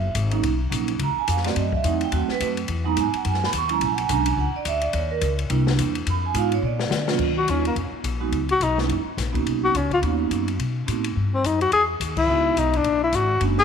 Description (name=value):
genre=jazz, small-group swing and bop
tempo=213 BPM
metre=4/4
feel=swing 59% on 8ths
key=Eb minor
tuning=A4 = 445 Hz
part: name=vibraphone with medium hard mallets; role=accompaniment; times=0.0-13.6 s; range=Gb3 to Db6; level=-25 LUFS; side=right 9 dB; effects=none
part: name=upright bass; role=bass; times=0.0-13.6 s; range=Gb1 to Eb3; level=-25 LUFS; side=left 2 dB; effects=none
part: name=open jazz drum kit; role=drums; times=0.1-13.6 s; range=crash cymbal, hi-hat, kick drum, ride cymbal, snare drum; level=-30 LUFS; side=left 7 dB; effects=none
part: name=breathy tenor saxophone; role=melody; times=7.4-13.6 s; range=Bb3 to G#4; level=-21 LUFS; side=left 4 dB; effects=none
room=moderate echo chamber reverb, RT60 2.0 s, small room ambience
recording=1960s-style stereo with parts hard left and right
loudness=-20 LUFS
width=side -7 dB against mid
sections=0.0-7.2 A section; 7.2-13.6 B section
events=drum fill 6.6-7.2; band accent 12.1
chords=0.4 Bmaj9; 1.6 Ebdim7; 2.7 Emaj9; 3.8 Bb7alt; 4.9 Bbmadd11 (rootless); 5.5 C7; 6.1 Fm7b5; 6.6 Bb; 7.2 Ebm9; 8.3 Dbm9; 8.9 Gb6; 9.5 Bmaj9; 10.6 B7b9; 11.7 Emaj9; 12.8 Bb7alt